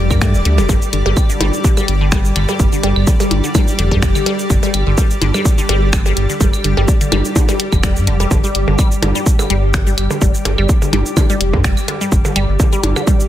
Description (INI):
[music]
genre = minimal techno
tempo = 126 BPM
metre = 4/4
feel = swing 54% on 16ths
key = unclear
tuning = A4 = 440 Hz
[part]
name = round analog bass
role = bass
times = 0.0-12.9 s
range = D1 to G2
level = -16 LUFS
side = equal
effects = sidechain pumping
[part]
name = granular cloud pad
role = texture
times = 0.0-13.3 s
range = G3 to D6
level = -22 LUFS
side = equal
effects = built-in reverb, sidechain pumping
[part]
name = resonant blip pluck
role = riff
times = 0.1-13.1 s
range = D3 to Bb3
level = -22 LUFS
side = left 2 dB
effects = phaser, sidechain pumping, dub echo
[part]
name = electronic kick drum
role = drums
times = 0.1-13.2 s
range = none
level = -14 LUFS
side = equal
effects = none
[part]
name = house drum kit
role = drums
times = 0.1-13.3 s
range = cabasa, finger snaps, hi-hat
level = -22 LUFS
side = left 1 dB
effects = none
[part]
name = claves and percussion blips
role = percussion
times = 0.1-13.1 s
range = none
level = -23 LUFS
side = right 2 dB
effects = none
[sound]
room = digital ambience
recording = none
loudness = -12 LUFS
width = side -12 dB against mid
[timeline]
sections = 0.0-13.3 A section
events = none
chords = 0.0 G5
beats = 0.21 | 0.69 1.17 1.64 2.12 | 2.60 3.07 3.55 4.03 | 4.50 4.98 5.45 5.93 | 6.41 6.88 7.36 7.83 | 8.31 8.79 9.26 9.74 | 10.21 10.69 11.17 11.64 | 12.12 12.60 13.07